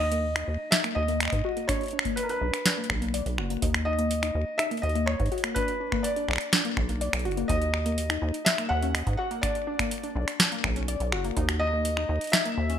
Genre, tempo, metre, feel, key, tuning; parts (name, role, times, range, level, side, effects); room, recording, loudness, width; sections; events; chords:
IDM; 124 BPM; 4/4; straight; Eb phrygian; A4 = 437 Hz
felt-muted upright piano; melody; 0.0-12.8 s; Bb4 to Gb5; -30 LUFS; equal; ping-pong delay
warbly dusty pluck; arpeggios; 0.0-12.8 s; Bb3 to Eb5; -32 LUFS; left 4 dB; chorus, ping-pong delay
deep acid bass; bass; 0.0-12.8 s; F#1 to Ab2; -29 LUFS; equal; tube saturation
booming analog drum machine; drums; 0.1-12.8 s; finger snaps, hi-hat, snare drum; -27 LUFS; right 1 dB
electronic kick drum; drums; 1.3-11.5 s; -32 LUFS; equal
moderate plate reverb, RT60 1.0 s; bright 1980s-style digital production; -24 LUFS; side -9 dB against mid
0.0-12.8 A section
0.0 Eb5; 1.7 Bmadd9; 3.6 Eb5; 5.6 Bm; 7.5 Ebm; 9.4 Bm; 11.4 Eb5